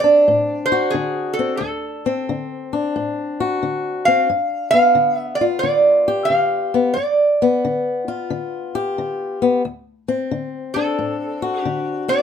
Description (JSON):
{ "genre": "acoustic country blues, solo or duo", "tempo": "90 BPM", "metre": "4/4", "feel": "swing 65% on 8ths", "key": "unclear", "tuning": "A4 = 440 Hz", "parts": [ { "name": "lap resonator guitar", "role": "melody", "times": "0.0-12.2 s", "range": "G#4 to F5", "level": "-17 LUFS", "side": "right 2 dB", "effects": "plate reverb" }, { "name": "fingerpicked swing-style acoustic guitar", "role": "accompaniment", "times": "0.0-12.2 s", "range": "D2 to G4", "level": "-21 LUFS", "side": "left 4 dB", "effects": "none" } ], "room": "moderate studio reverb, RT60 0.5 s", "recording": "none", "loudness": "-17 LUFS", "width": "side -8 dB against mid", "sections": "0.0-12.2 A section", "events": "none", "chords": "0.0 D7; 4.3 G7; 9.6 D7" }